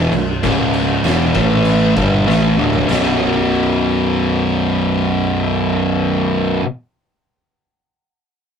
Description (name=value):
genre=stoner and doom metal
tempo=97 BPM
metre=4/4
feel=straight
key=B minor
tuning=A4 = 441 Hz
part: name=fuzz guitar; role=riff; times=0.0-6.7 s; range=B1 to A3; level=-14 LUFS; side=equal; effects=distortion
part: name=fingered electric bass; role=bass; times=0.0-6.6 s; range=B0 to A1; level=-23 LUFS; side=equal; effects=overdrive
part: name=oversized low-tuned drum kit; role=drums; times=0.1-3.0 s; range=crash cymbal, kick drum, snare drum, splash cymbal, toms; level=-21 LUFS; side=left 1 dB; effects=none
room=light reverb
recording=rough rehearsal-room recording, tube saturation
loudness=-13 LUFS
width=side -7 dB against mid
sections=0.0-2.9 A section; 2.9-5.4 B section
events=drum fill 2.3-2.9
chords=0.4 C#5; 1.0 E5; 1.4 A5; 2.0 Dsus24; 2.9 B5